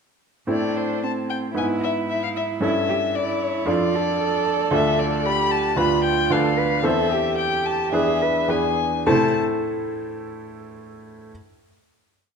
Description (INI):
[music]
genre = quick classical-period movement for piano trio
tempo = 112 BPM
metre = 4/4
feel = uneven beats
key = A minor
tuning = A4 = 440 Hz
[part]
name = muted violin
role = melody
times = 0.5-9.4 s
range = C5 to B5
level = -24 LUFS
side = left 7 dB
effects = none
[part]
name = muted cello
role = second line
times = 0.5-9.4 s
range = C3 to B4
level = -25 LUFS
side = right 7 dB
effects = none
[part]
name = bright baby grand piano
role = accompaniment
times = 0.5-11.3 s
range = D2 to A5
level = -23 LUFS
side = equal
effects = none
[sound]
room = wet recital hall reverb, RT60 1.4 s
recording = dark, warm production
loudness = -19 LUFS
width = side -6 dB against mid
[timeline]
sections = 0.5-9.1 theme; 9.1-11.3 final chord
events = none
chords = 0.5 Am; 1.6 E/G#; 2.6 A7/G; 3.7 Dm/F; 4.7 Dm; 5.8 Bdim/D; 6.8 Am/E; 7.9 E7; 9.1 Am